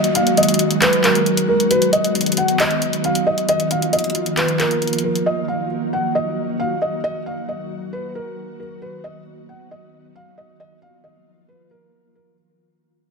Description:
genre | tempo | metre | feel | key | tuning
hip hop, trap | 135 BPM | 4/4 | half-time | Eb minor | A4 = 444 Hz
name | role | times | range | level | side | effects
felt-muted upright piano | melody | 0.0-12.3 s | Bb4 to F#5 | -20 LUFS | equal | ping-pong delay
ethereal airy pad | sustained chords | 0.0-12.4 s | Eb3 to Gb4 | -21 LUFS | right 1 dB | ensemble chorus, built-in reverb
trap drum kit | drums | 0.0-5.3 s | handclaps, hi-hat | -21 LUFS | left 1 dB | none
downlifter | sound effects | 0.0-1.7 s | none | -38 LUFS | equal | none
room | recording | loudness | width
moderate concert hall reverb, RT60 2.1 s | none | -16 LUFS | side -4 dB against mid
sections
0.0-12.4 A section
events
break 0.0-5.3; fade-out 0.0-12.4; kick muted 4.4-5.3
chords
0.0 Ebm; 1.7 B; 3.5 Bbsus4; 5.3 Ebm; 8.8 B; 10.6 Bbsus4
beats
0.37 0.82 1.26 | 1.71 2.15 2.60 3.04 | 3.48 3.93 4.37 4.82 | 5.26 5.71 6.15 6.60 | 7.04 7.49 7.93 8.37 | 8.82 9.26 9.71 10.15 | 10.60 11.04 11.48 11.93

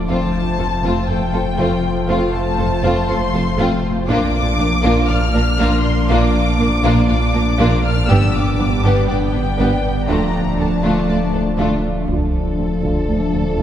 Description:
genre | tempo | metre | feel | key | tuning
cinematic, hybrid orchestral and electronic film score | 120 BPM | 4/4 | straight | D minor | A4 = 440 Hz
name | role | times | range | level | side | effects
brassy analog pad | sustained chords | 0.0-13.6 s | F3 to D5 | -22 LUFS | left 2 dB | chorus, low-pass filter
warm sub bass | bass | 0.0-13.6 s | D1 to Bb1 | -22 LUFS | equal | none
warm symphonic violin section | melody | 0.1-13.6 s | D5 to F6 | -25 LUFS | left 3 dB | low-pass filter
warm symphonic violin section | second line | 0.1-13.6 s | A3 to D5 | -23 LUFS | left 2 dB | none
warm studio viola section | accompaniment | 0.1-13.6 s | A3 to F4 | -24 LUFS | right 1 dB | low-pass filter
rich symphonic double bass section | bass | 0.1-13.6 s | F1 to D2 | -24 LUFS | right 2 dB | none
warm studio cello section | bass | 0.1-13.6 s | D2 to Bb2 | -23 LUFS | right 2 dB | none
dark French horn section | sustained chords | 12.1-13.6 s | F3 to A4 | -25 LUFS | left 1 dB | low-pass filter
taiko ensemble | drums | 12.1-13.1 s | none | -24 LUFS | equal | none
room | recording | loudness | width
wet cathedral reverb, RT60 4.2 s | recorded in a church or concert hall | -15 LUFS | side -10 dB against mid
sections
0.0-12.1 A section; 12.1-13.6 B section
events
filter sweep 12.1-13.6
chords
0.1 F; 4.1 Bb; 8.1 G; 10.1 Dm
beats
| 0.09 0.59 1.09 1.59 | 2.09 2.59 3.09 3.59 | 4.09 4.59 5.09 5.59 | 6.09 6.59 7.09 7.59 | 8.09 8.59 9.09 9.59 | 10.09 10.59 11.09 11.59 | 12.09 12.59 13.09 13.59

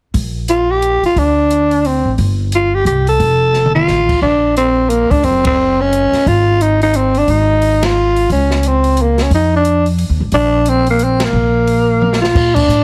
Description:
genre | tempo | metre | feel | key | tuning
jazz, small-group swing and bop | 177 BPM | 3/4 | swing 62% on 8ths | Bb major | A4 = 440 Hz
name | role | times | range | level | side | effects
upright bass | bass | 0.1-12.8 s | F1 to Bb2 | -18 LUFS | equal | none
open jazz drum kit | drums | 0.1-12.8 s | crash cymbal, hi-hat, kick drum, ride cymbal, snare drum, toms | -23 LUFS | equal | none
growling tenor saxophone | melody | 0.5-12.8 s | Bb3 to A4 | -15 LUFS | equal | none
room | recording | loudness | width
light reverb | heavily compressed radio sound, multiband compression | -13 LUFS | mono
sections
0.1-4.2 A section; 4.2-12.4 B section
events
drum fill 3.5-3.9, 12.0-12.4; band accent 5.4, 7.8, 11.2, 12.5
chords
0.1 Gm7/Bb; 1.2 D5; 2.2 G7sus4; 3.2 F; 4.2 Bb; 5.2 Gb5; 6.3 Ab5; 8.3 Bbmadd9/Db; 9.3 F5; 10.3 N.C.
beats
| 0.14 0.48 0.82 | 1.16 1.50 1.84 | 2.18 2.52 2.86 | 3.20 3.54 3.88 | 4.22 4.56 4.90 | 5.24 5.57 5.91 | 6.25 6.59 6.93 | 7.27 7.61 7.95 | 8.29 8.62 8.96 | 9.30 9.64 9.98 | 10.32 10.66 11.00 | 11.34 11.67 12.01 | 12.35 12.69

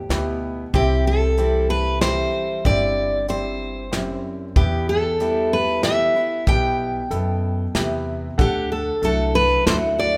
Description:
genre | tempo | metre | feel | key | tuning
honky-tonk and classic country | 94 BPM | 3/4 | straight | E minor | A4 = 440 Hz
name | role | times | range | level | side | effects
picked steel-string acoustic guitar | melody | 0.0-10.2 s | G4 to G5 | -24 LUFS | equal | none
picked steel-string acoustic guitar | accompaniment | 0.0-10.2 s | E2 to F#4 | -30 LUFS | equal | none
warm concert grand piano | accompaniment | 0.1-10.2 s | B3 to F#5 | -30 LUFS | equal | none
upright bass | bass | 0.1-10.2 s | G1 to F#2 | -27 LUFS | equal | none
soft brush drum kit | drums | 0.1-9.8 s | hi-hat, kick drum, snare drum | -23 LUFS | equal | none
room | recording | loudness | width
moderate recital hall reverb, RT60 1.6 s | none | -21 LUFS | mono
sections
0.0-10.2 A section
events
none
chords
0.0 Em; 0.7 C; 4.6 Em; 8.4 Dadd9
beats
0.10 | 0.74 1.38 2.02 | 2.65 3.29 3.93 | 4.57 5.20 5.84 | 6.48 7.12 7.75 | 8.39 9.03 9.67

